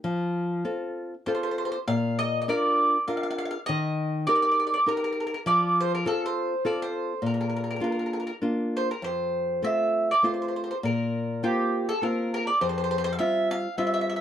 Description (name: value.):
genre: italian folk, Italian serenade.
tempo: 101 BPM.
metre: 3/4.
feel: swing 53% on 8ths, rubato.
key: Bb major, F major from 9.0 s.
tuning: A4 = 439 Hz.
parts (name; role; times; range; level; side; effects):
nylon-string guitar; accompaniment; 0.0-14.2 s; F2 to Bb4; -27 LUFS; left 2 dB; none.
mandolin; melody; 1.3-14.2 s; G4 to F5; -26 LUFS; right 1 dB; none.
room: moderate studio reverb, RT60 0.6 s.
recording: dark, warm production.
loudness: -24 LUFS.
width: side -10 dB against mid.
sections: 0.0-9.0 A section; 9.0-14.2 B section.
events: none.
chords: 0.0 F; 1.9 Bb; 3.7 Eb; 5.5 F; 7.2 Bb; 9.0 F; 10.8 Bbsus2; 12.6 Fsus2.